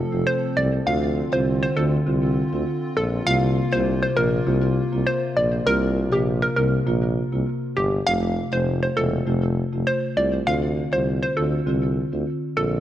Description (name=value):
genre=dancehall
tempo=100 BPM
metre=4/4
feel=straight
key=unclear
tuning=A4 = 442 Hz
part: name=marimba with medium mallets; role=accompaniment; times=0.0-12.8 s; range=C3 to F4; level=-25 LUFS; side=equal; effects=none
part: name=hollow soft pad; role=sustained chords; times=0.0-8.0 s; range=C3 to A4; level=-30 LUFS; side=right 1 dB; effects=chorus
part: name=warm tuba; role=bass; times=0.1-12.8 s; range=E1 to D2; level=-24 LUFS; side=equal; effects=none
part: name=hollow square pluck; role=melody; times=0.3-12.7 s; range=G4 to F5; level=-24 LUFS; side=equal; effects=chorus, digital delay
room=moderate lush hall reverb, RT60 2.5 s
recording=worn, warbling old tape, cassette tape, warbly pitch drift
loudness=-20 LUFS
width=side -12 dB against mid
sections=0.0-8.1 A section; 8.1-12.8 B section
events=none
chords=0.0 F; 0.9 Dm7; 3.3 C7sus4; 8.1 F; 10.5 Dm7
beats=0.27 | 0.87 1.47 2.07 2.67 | 3.27 3.87 4.47 5.07 | 5.67 6.27 6.87 7.47 | 8.07 8.67 9.27 9.87 | 10.47 11.07 11.67 12.27